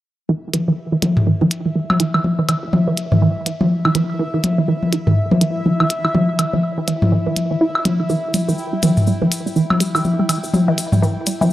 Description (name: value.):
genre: minimal techno.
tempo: 123 BPM.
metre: 4/4.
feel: swing 59% on 16ths.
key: E minor.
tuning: A4 = 439 Hz.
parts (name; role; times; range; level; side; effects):
resonant blip pluck; riff; 0.3-11.5 s; E3 to E4; -20 LUFS; right 3 dB; phaser, analog delay.
woody FM bass; bass; 0.3-11.1 s; D1 to B1; -37 LUFS; equal; none.
bubbling stepped-filter texture; texture; 1.1-11.5 s; E4 to G5; -27 LUFS; left 1 dB; chorus, built-in reverb.
electronic hi-hat; drums; 0.5-11.4 s; none; -23 LUFS; equal; none.
electronic toms and woodblock; percussion; 0.5-11.5 s; none; -17 LUFS; left 2 dB; analog delay.
cabasa; percussion; 8.1-11.5 s; none; -30 LUFS; left 2 dB; none.
room: light reverb.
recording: dry, gritty hardware recording.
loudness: -15 LUFS.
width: side -14 dB against mid.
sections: 0.3-11.5 A section.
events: filter sweep on synth arpeggio sound 0.3-11.5.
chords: 0.3 Em.